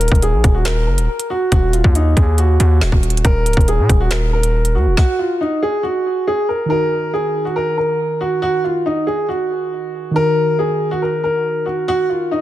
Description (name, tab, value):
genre	hip hop, drill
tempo	139 BPM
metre	4/4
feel	half-time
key	Eb minor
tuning	A4 = 441 Hz
part	warm upright piano	melody	0.0-12.4 s	Eb4 to Bb4	-18 LUFS	equal	ping-pong delay
part	distorted 808-style bass	bass	0.0-5.0 s	Db1 to Bb2	-15 LUFS	equal	distortion
part	drill drum kit	drums	0.0-5.1 s	finger snaps, hi-hat, kick drum, snare drum	-16 LUFS	equal	none
part	muted felt-like synth keys	accompaniment	6.7-12.4 s	Eb3 to Bb4	-22 LUFS	right 1 dB	chorus
room	digital ambience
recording	dense, heavily limited modern master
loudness	-14 LUFS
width	side -14 dB against mid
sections	0.0-6.7 A section; 6.7-12.4 B section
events	stop 5.0-6.7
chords	0.0 Ebm